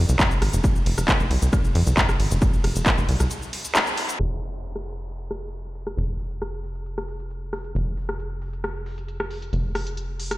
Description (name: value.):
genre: driving peak-time techno.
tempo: 135 BPM.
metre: 4/4.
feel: straight.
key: F minor.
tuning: A4 = 436 Hz.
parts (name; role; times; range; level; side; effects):
tight sequencer bass; bass; 0.0-10.4 s; F1 to F2; -25 LUFS; equal; sidechain pumping.
techno drum kit; drums; 0.1-10.4 s; handclaps, hi-hat, ride cymbal, rim click, shaker; -26 LUFS; equal; overdrive, sidechain pumping on hats, sidechain pumping on cymbals, sidechain pumping on perc.
electronic kick drum; drums; 0.2-3.0 s; none; -21 LUFS; equal; overdrive.
room: light reverb, digital ambience.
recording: played on a big sound system in a bare room, large studio reverb, low-pass filter.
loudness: -21 LUFS.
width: side -17 dB against mid.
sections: 0.0-4.2 A section; 4.2-10.4 B section.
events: drop 0.0-4.2; break 3.3-4.2; band accent 3.8; filter sweep 4.2-10.4.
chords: none.